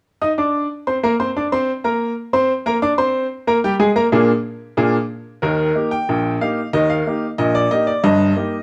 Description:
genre	ragtime piano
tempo	92 BPM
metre	2/4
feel	straight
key	Eb major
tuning	A4 = 440 Hz
part	bright upright piano	solo	0.2-8.6 s	G1 to Eb6	-18 LUFS	equal	none
room	moderate studio reverb, RT60 0.9 s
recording	dark, warm production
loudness	-18 LUFS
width	mono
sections	0.2-5.4 A section; 5.4-8.6 B section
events	none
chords	0.2 N.C.; 2.8 Bb7; 5.4 Eb; 8.0 Eb/G

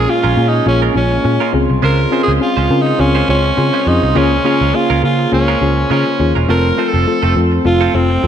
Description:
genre	pop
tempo	103 BPM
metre	4/4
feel	swing 55% on 16ths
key	Bb minor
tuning	A4 = 441 Hz
part	raspy alto saxophone	melody	0.0-8.3 s	C4 to Bb4	-17 LUFS	right 2 dB	ping-pong delay
part	mellow FM electric piano	accompaniment	0.0-8.3 s	Bb2 to Bb4	-16 LUFS	left 4 dB	chorus
part	mellow brass ensemble	sustained chords	0.0-8.3 s	Db3 to C5	-24 LUFS	right 4 dB	none
part	direct-recorded clean electric guitar	riff	0.0-8.3 s	Ab3 to C5	-22 LUFS	right 8 dB	wide subtle chorus
part	vintage muted picked electric bass	bass	0.0-8.3 s	E1 to Db3	-16 LUFS	right 1 dB	none
room	moderate lush hall reverb, RT60 2.4 s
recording	dark, warm production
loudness	-11 LUFS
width	side -9 dB against mid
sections	0.0-8.3 A section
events	none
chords	0.0 Bbm7; 1.5 Dbmaj7; 4.2 Bbm7/Db; 6.5 F

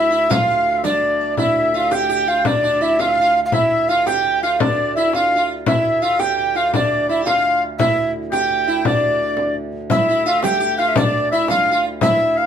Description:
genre	medieval dance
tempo	113 BPM (dotted quarters)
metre	6/8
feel	straight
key	D minor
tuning	A4 = 440 Hz
part	mellow tenor recorder	melody	0.0-12.5 s	D5 to G5	-17 LUFS	right 1 dB	none
part	bright shawm	second line	0.0-12.5 s	D5 to G5	-24 LUFS	left 5 dB	none
part	sitar	second line	0.0-12.5 s	D4 to G4	-23 LUFS	right 5 dB	none
part	hand-pumped harmonium	drone	0.0-12.5 s	D2	-29 LUFS	equal	none
part	frame drum	percussion	0.3-12.2 s	none	-22 LUFS	left 4 dB	none
part	riq	percussion	0.3-1.3, 9.9-12.2 s	none	-26 LUFS	right 5 dB	none
room	wet studio ambience, RT60 0.5 s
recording	band playing live in one room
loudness	-15 LUFS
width	side -8 dB against mid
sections	0.0-1.4 A section; 1.4-9.9 B section; 9.9-12.5 B section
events	speeding up 0.0-12.5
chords	none

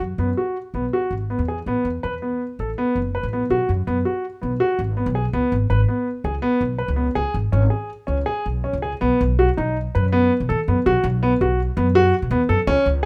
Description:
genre	contemporary instrumental, chamber music in an uneven meter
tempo	164 BPM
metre	5/4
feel	straight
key	unclear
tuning	A4 = 440 Hz
part	upright bass	bass	0.0-13.1 s	F#1 to B2	-24 LUFS	equal	none
part	warm concert grand piano	arpeggios	0.2-13.1 s	B3 to B4	-23 LUFS	equal	none
room	moderate studio reverb, RT60 0.6 s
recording	none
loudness	-21 LUFS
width	mono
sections	0.0-9.0 A section; 9.0-13.1 B section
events	none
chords	0.0 B5; 1.7 Asus2; 3.5 B5; 5.3 C#5; 9.0 B5

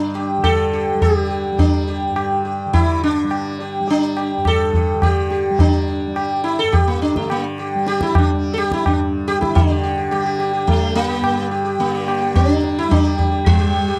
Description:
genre	indian classical, Hindustani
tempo	106 BPM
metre	7/4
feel	straight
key	G raga shivaranjani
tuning	A4 = 441 Hz
part	sitar	melody	0.0-14.0 s	G3 to A4	-21 LUFS	equal	none
part	tanpura	drone	0.0-14.0 s	G2 to G3	-29 LUFS	equal	none
part	tabla	percussion	0.2-13.7 s	none	-21 LUFS	equal	none
room	small room ambience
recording	dry, close 1970s-style studio recording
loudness	-18 LUFS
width	mono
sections	0.0-9.6 A section; 9.6-14.0 B section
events	speeding up 0.0-14.0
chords	none

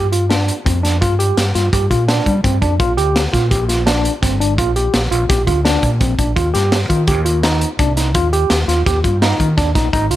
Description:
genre	progressive instrumental, band music in an uneven meter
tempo	168 BPM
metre	5/4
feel	straight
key	unclear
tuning	A4 = 441 Hz
part	tine electric piano	arpeggios	0.0-10.2 s	C4 to G4	-18 LUFS	equal	slow stereo tremolo
part	overdriven fingered electric bass	bass	0.0-10.2 s	G1 to G3	-17 LUFS	equal	none
part	crunchy breakbeat drum kit	drums	0.1-10.2 s	hi-hat, kick drum, snare drum	-18 LUFS	equal	none
room	light reverb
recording	none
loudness	-13 LUFS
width	side -14 dB against mid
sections	0.0-10.2 A section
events	none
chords	0.0 G7(no3); 2.8 Bb6; 6.4 Eb

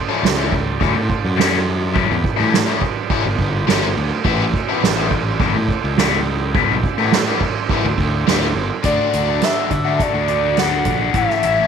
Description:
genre	psychedelic rock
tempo	104 BPM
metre	4/4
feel	straight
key	A mixolydian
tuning	A4 = 441 Hz
part	combo organ	sustained chords	0.0-11.7 s	E4 to D5	-28 LUFS	right 10 dB	none
part	biting overdriven guitar	riff	0.1-11.7 s	A2 to F#4	-20 LUFS	left 16 dB	phaser
part	fuzz fingered electric bass	bass	0.2-11.7 s	G1 to D3	-22 LUFS	left 1 dB	overdrive
part	soft-mallet drum kit	drums	0.2-11.6 s	hi-hat, kick drum, ride cymbal, snare drum	-19 LUFS	right 5 dB	none
part	overdriven synth lead	melody	8.9-11.7 s	D5 to F#5	-19 LUFS	equal	distortion, chorus, tape echo
room	light reverb, small room reverb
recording	1960s-style stereo with parts hard left and right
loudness	-15 LUFS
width	side -7 dB against mid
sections	0.0-8.8 A section; 8.8-11.7 B section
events	none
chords	0.0 A7sus4; 4.3 Em7; 8.8 D; 11.1 A

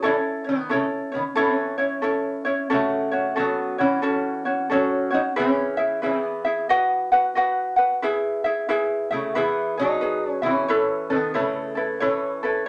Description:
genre	hawaiian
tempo	90 BPM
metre	4/4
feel	swing 63% on 8ths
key	E major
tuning	A4 = 441 Hz
part	lap resonator guitar	melody	0.0-12.7 s	C#3 to D#4	-28 LUFS	equal	none
part	ukulele	accompaniment	0.0-12.7 s	C#4 to F#5	-24 LUFS	equal	none
room	wet studio reverb, RT60 0.5 s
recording	nothing above 10.4 kHz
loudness	-23 LUFS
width	mono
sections	0.0-12.7 A section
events	none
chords	0.0 A; 2.7 F#m; 5.4 E; 6.7 B; 8.0 E; 10.7 Aadd9

